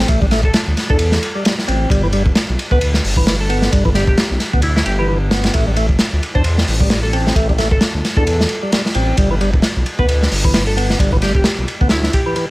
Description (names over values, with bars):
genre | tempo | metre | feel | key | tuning
breakbeat, breaks | 132 BPM | 4/4 | swing 57% on 16ths | unclear | A4 = 440 Hz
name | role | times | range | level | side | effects
percussive tonewheel organ | riff | 0.0-12.5 s | E3 to D4 | -21 LUFS | equal | overdrive, stopped rotary speaker, digital delay
dark detuned saw bass | bass | 0.0-12.1 s | E1 to E2 | -18 LUFS | equal | none
crunchy breakbeat drum kit | drums | 0.1-12.5 s | hi-hat, kick drum, ride cymbal, snare drum | -16 LUFS | equal | none
glassy wavetable pluck | melody | 0.4-12.3 s | E4 to C5 | -23 LUFS | equal | chorus, old record sound, digital delay
room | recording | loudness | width
light reverb | vinyl crackle | -13 LUFS | side -19 dB against mid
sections
0.0-12.5 A section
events
none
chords
0.0 Am7; 1.9 G6; 5.5 Am7; 9.2 G6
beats
| 0.09 0.54 1.00 1.45 | 1.91 2.36 2.81 3.27 | 3.72 4.18 4.63 5.09 | 5.54 6.00 6.45 6.91 | 7.36 7.82 8.27 8.72 | 9.18 9.63 10.09 10.54 | 11.00 11.45 11.91 12.36